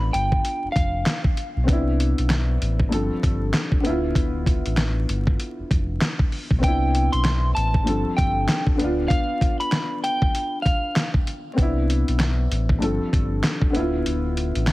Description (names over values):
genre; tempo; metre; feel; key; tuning
hip hop, boom-bap hip-hop; 97 BPM; 4/4; swing 61% on 16ths; D dorian; A4 = 440 Hz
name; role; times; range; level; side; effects
electric guitar at the edge of break-up; melody; 0.0-1.2, 6.6-11.1 s; F5 to C6; -26 LUFS; equal; high-pass filter, low-pass filter, analog delay
dark upright piano; accompaniment; 0.0-14.7 s; G2 to A4; -26 LUFS; left 1 dB; cassette tape, high-pass filter, low-pass filter
sub bass with octave; bass; 0.0-14.7 s; D1 to C2; -23 LUFS; equal; none
dusty soul sampler-style drum kit; drums; 0.1-14.7 s; handclaps, hi-hat, kick drum, snare drum; -22 LUFS; equal; none
room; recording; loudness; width
little or no reverb; heavily compressed radio sound, vinyl crackle; -19 LUFS; side -19 dB against mid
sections
0.0-14.7 A section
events
break 9.1-11.6; kick muted 14.1-14.7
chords
0.0 Dm6; 1.7 Cmaj9; 2.9 G9sus4; 3.8 Dm69; 6.6 Cmaj9; 7.9 G9sus4; 8.8 Dm6; 11.6 Cmaj9; 12.8 G9sus4; 13.7 Dm69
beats
0.44 1.06 | 1.68 2.30 2.92 3.54 | 4.15 4.77 5.39 6.01 | 6.63 7.25 7.87 8.48 | 9.10 9.72 10.34 10.96 | 11.58 12.20 12.81 13.43 | 14.05 14.67